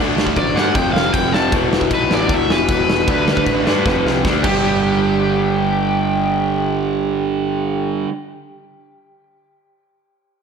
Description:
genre	punk rock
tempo	155 BPM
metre	4/4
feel	straight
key	G major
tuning	A4 = 441 Hz
part	distorted electric guitar	riff	0.0-8.1 s	E2 to D4	-21 LUFS	right 10 dB	distortion
part	raw garage guitar	riff	0.0-8.1 s	E2 to D4	-22 LUFS	left 10 dB	overdrive
part	fuzz picked electric bass	bass	0.0-8.1 s	E1 to G2	-25 LUFS	equal	overdrive
part	big rock drum kit	drums	0.2-4.5 s	crash cymbal, kick drum, snare drum	-20 LUFS	equal	none
part	cranked stack guitar	melody	0.4-8.0 s	G4 to A5	-21 LUFS	right 1 dB	overdrive, slapback echo, digital delay
room	moderate recital hall reverb, RT60 1.6 s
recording	big arena sound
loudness	-14 LUFS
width	side -6 dB against mid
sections	0.0-4.6 A section; 4.6-7.7 B section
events	drum fill 3.9-4.6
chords	0.0 D5; 0.8 F5; 1.5 E5; 3.1 D5; 3.9 F5; 4.2 D5; 4.4 G5

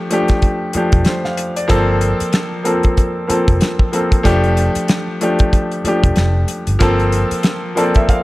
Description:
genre	lush 1970s-style soul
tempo	94 BPM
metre	4/4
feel	swing 58% on 16ths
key	F major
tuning	A4 = 441 Hz
part	bright concert grand piano	accompaniment	0.0-8.2 s	F3 to F5	-16 LUFS	left 1 dB	none
part	damped 70s drum kit	drums	0.1-8.2 s	hi-hat, kick drum, snare drum	-16 LUFS	equal	none
part	vintage muted fingered electric bass	bass	0.7-7.3 s	E1 to G1	-17 LUFS	equal	none
room	light reverb, small room ambience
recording	none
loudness	-13 LUFS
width	side -19 dB against mid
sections	0.0-8.2 A section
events	grand piano fill 7.5-8.2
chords	0.0 F69; 1.7 Gm11; 4.3 F69; 6.8 Gm11

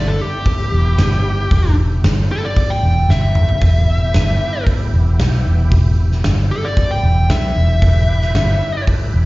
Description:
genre	blues rock power trio and southern rock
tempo	114 BPM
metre	4/4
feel	straight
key	E minor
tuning	A4 = 440 Hz
part	fuzz lead guitar	melody	0.0-8.8 s	G4 to G5	-22 LUFS	equal	distortion, slapback echo, tape echo
part	overdriven tonewheel organ	sustained chords	0.0-9.3 s	B3 to B4	-30 LUFS	right 3 dB	slow rotary speaker, chorus vibrato
part	vintage muted fingered electric bass	bass	0.0-9.3 s	E1 to B1	-14 LUFS	equal	none
part	huge arena drum kit	drums	0.5-9.0 s	hi-hat, kick drum, snare drum, toms	-19 LUFS	equal	none
room	studio reverb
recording	live gig heard through the venue's PA, recital hall reverb, nothing above 7.6 kHz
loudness	-13 LUFS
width	side -20 dB against mid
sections	0.0-9.3 A section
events	lead electric guitar solo 0.0-9.3; drum fill 3.1-3.6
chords	0.0 Em

